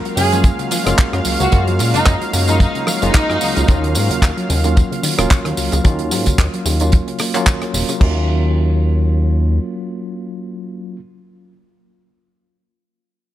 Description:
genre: nu-disco, nu disco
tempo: 111 BPM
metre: 4/4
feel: swing 56% on 16ths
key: Eb minor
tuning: A4 = 439 Hz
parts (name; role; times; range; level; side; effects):
- tine electric piano; accompaniment; 0.0-11.0 s; Gb3 to F4; -22 LUFS; equal; medium stereo tremolo, sidechain pumping, analog delay
- lush unison pad; sustained chords; 0.0-8.0 s; Gb3 to F5; -26 LUFS; equal; chorus, sidechain pumping
- wide unison pluck; arpeggios; 0.1-8.3 s; Db3 to Bb3; -27 LUFS; left 3 dB; sidechain pumping, tape echo
- damped 70s drum kit; drums; 0.1-8.1 s; crash cymbal, handclaps, hi-hat, rim click; -22 LUFS; right 2 dB; studio reverb
- warm symphonic violin section; melody; 0.2-3.7 s; Eb4 to Ab4; -21 LUFS; right 1 dB; tape echo
- chorused synth bass; bass; 0.2-9.6 s; Eb1 to Bb2; -17 LUFS; equal; none
- tambourine; percussion; 0.2-8.0 s; none; -26 LUFS; equal; none
- kick drum; drums; 0.4-8.1 s; none; -13 LUFS; equal; studio reverb
room: small room ambience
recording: none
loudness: -13 LUFS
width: side -13 dB against mid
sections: 0.0-8.0 A section; 8.0-12.3 B section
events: drop 0.0-8.0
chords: 0.0 Gbmaj7; 3.7 Ebm7

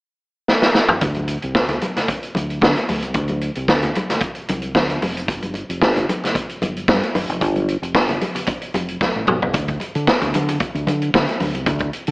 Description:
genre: disco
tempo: 113 BPM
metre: 4/4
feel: straight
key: D dorian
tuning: A4 = 440 Hz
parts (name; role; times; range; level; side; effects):
- vintage drum kit; drums; 0.5-12.1 s; hi-hat, kick drum, snare drum, toms; -19 LUFS; equal; none
- deep dub fingered electric bass; bass; 1.0-12.1 s; F1 to D3; -22 LUFS; equal; none
- congas; percussion; 1.0-11.8 s; none; -26 LUFS; left 1 dB; none
room: moderate echo chamber reverb, RT60 1.7 s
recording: AM radio sound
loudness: -17 LUFS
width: side -26 dB against mid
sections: 0.0-1.0 A section; 1.0-9.5 B section; 9.5-12.1 C section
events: drum fill 0.5-1.0, 9.0-9.5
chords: none

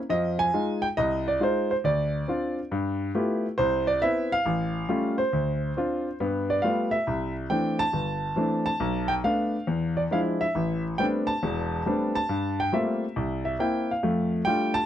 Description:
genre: solo jazz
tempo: 138 BPM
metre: 4/4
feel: swing 67% on 8ths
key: C major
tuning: A4 = 440 Hz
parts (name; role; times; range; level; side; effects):
- clear grand piano; solo; 0.1-14.9 s; E1 to A5; -24 LUFS; equal; none
room: moderate booth ambience, RT60 0.1 s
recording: dry, close 1970s-style studio recording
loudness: -24 LUFS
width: side -10 dB against mid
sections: 0.0-7.1 A section; 7.1-14.9 B section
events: none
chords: 0.1 Fm7; 1.8 Dm7; 2.7 G13; 3.6 Cmaj7; 4.5 Aaug7; 5.3 Dm7; 6.2 G9; 7.1 C69; 8.8 Bm7b5; 9.7 E7b9; 10.6 Am11; 12.3 Gm11; 13.2 C7; 14.0 F69

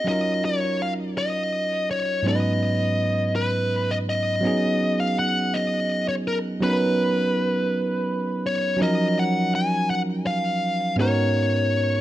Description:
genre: R&B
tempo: 55 BPM (dotted quarters)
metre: 6/8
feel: straight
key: unclear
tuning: A4 = 440 Hz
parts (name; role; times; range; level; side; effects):
- smooth overdriven lead guitar; melody; 0.0-12.0 s; Bb4 to Ab5; -24 LUFS; left 1 dB; digital delay
- bell-like tine electric piano; accompaniment; 0.0-12.0 s; Ab2 to Cb5; -23 LUFS; right 1 dB; none
room: moderate studio reverb, RT60 0.8 s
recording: dark, warm production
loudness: -21 LUFS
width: side -14 dB against mid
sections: 0.0-4.4 A section; 4.4-12.0 B section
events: none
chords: 0.1 Ebm9; 2.3 Abm7; 4.4 Db7sus4; 8.8 Ebm9; 11.0 Abm11

